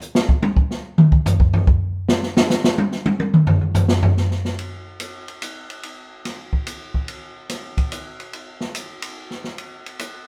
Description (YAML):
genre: jazz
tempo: 144 BPM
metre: 3/4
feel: swing 67% on 8ths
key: none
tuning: none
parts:
  - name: open jazz drum kit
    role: drums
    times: 0.0-10.1 s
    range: hi-hat, kick drum, ride cymbal, snare drum, toms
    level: -20 LUFS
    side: equal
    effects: none
room: moderate studio reverb, RT60 0.8 s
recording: none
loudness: -19 LUFS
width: mono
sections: 0.0-4.6 A section; 4.6-10.3 B section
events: drum solo 0.0-4.6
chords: none